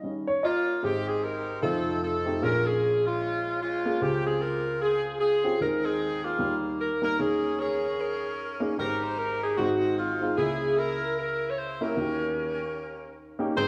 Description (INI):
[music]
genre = gospel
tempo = 151 BPM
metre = 4/4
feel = swing 60% on 8ths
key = Ab major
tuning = A4 = 440 Hz
[part]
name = dark grand piano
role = accompaniment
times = 0.0-13.7 s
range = F1 to Eb5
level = -32 LUFS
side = equal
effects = none
[part]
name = edgy saxophone section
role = melody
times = 0.4-13.7 s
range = Ab3 to Db5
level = -29 LUFS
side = equal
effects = none
[sound]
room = wet concert hall reverb, RT60 1.8 s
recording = worn, warbling old tape, cassette tape, warbly pitch drift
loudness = -28 LUFS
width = mono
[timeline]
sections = 0.8-13.6 A section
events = none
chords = 0.0 Eb7; 0.8 Abmaj7; 1.6 F7; 2.4 Bbm7; 4.0 Dbmaj7; 5.6 Ab/Eb; 6.4 Eb; 7.2 Eb7sus4; 8.8 Abmaj7; 9.6 Ab7; 10.4 Dbm6; 12.0 Eb7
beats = 0.04 0.44 | 0.84 1.23 1.63 2.03 | 2.43 2.82 3.22 3.62 | 4.01 4.41 4.81 5.21 | 5.60 6.00 6.40 6.79 | 7.19 7.59 7.99 8.38 | 8.78 9.18 9.58 9.97 | 10.37 10.77 11.17 11.57 | 11.97 12.37 12.77 13.16 | 13.56